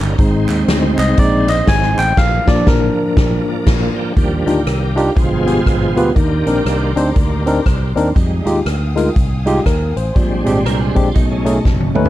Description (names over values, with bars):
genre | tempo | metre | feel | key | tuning
uptempo gospel | 120 BPM | 4/4 | swing 61% on 8ths | Eb major | A4 = 440 Hz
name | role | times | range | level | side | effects
bright tonewheel organ | sustained chords | 0.0-11.5 s | B2 to G5 | -22 LUFS | right 3 dB | fast rotary speaker, overdrive, chorus vibrato, plate reverb
fingered electric bass | bass | 0.0-12.1 s | F#1 to F2 | -18 LUFS | equal | none
group handclap | percussion | 0.0-2.1 s | none | -30 LUFS | right 4 dB | none
barky tine electric piano | accompaniment | 0.2-12.1 s | G2 to Ab5 | -17 LUFS | left 1 dB | medium stereo tremolo, plate reverb
swinging big-band drum kit | drums | 0.2-12.1 s | crash cymbal, hi-hat, kick drum, rim click, snare drum, toms | -17 LUFS | equal | none
warm studio string section | sustained chords | 4.2-12.1 s | D5 to Eb6 | -32 LUFS | left 2 dB | plate reverb
clean electric guitar | second line | 10.7-12.0 s | C#4 to Bb4 | -27 LUFS | right 8 dB | ensemble chorus, plate reverb
room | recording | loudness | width
light reverb | dark, warm production | -12 LUFS | side -14 dB against mid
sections
0.0-4.2 A section; 4.2-12.1 B section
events
tine electric piano solo 0.0-4.2; band accent 2.2-4.2; tonewheel organ solo 4.2-12.1; drum fill 11.7-12.1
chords
0.2 Ab; 2.2 Bb; 4.2 Ebmaj9; 5.2 G7b9; 6.2 Cm9; 8.2 Fm9; 10.2 Bb13; 11.2 B13